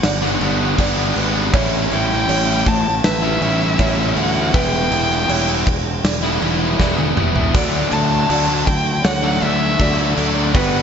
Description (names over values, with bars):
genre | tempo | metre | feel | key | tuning
post-rock | 80 BPM | 4/4 | straight | D major | A4 = 440 Hz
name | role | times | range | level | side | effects
warm violin | melody | 0.0-10.8 s | D5 to A5 | -22 LUFS | left 1 dB | slapback echo, digital delay
felt-muted upright piano | arpeggios | 0.0-10.8 s | B4 to D5 | -28 LUFS | right 5 dB | digital delay
fuzz fingered electric bass | bass | 0.0-10.8 s | E1 to D2 | -22 LUFS | equal | overdrive
huge arena drum kit | drums | 0.0-10.7 s | crash cymbal, kick drum, snare drum, splash cymbal, toms | -20 LUFS | equal | none
biting overdriven guitar | riff | 0.2-10.8 s | G2 to E4 | -19 LUFS | left 1 dB | none
pedal steel guitar | sustained chords | 7.5-10.8 s | F#3 to B4 | -29 LUFS | left 1 dB | none
room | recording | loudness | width
moderate lush hall reverb, RT60 2.6 s | big arena sound, nothing above 7.8 kHz | -15 LUFS | side -7 dB against mid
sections
0.0-10.8 A section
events
drum fill 6.8-7.5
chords
0.0 Gmaj7; 1.5 A7; 4.5 Em7; 7.5 Dmaj7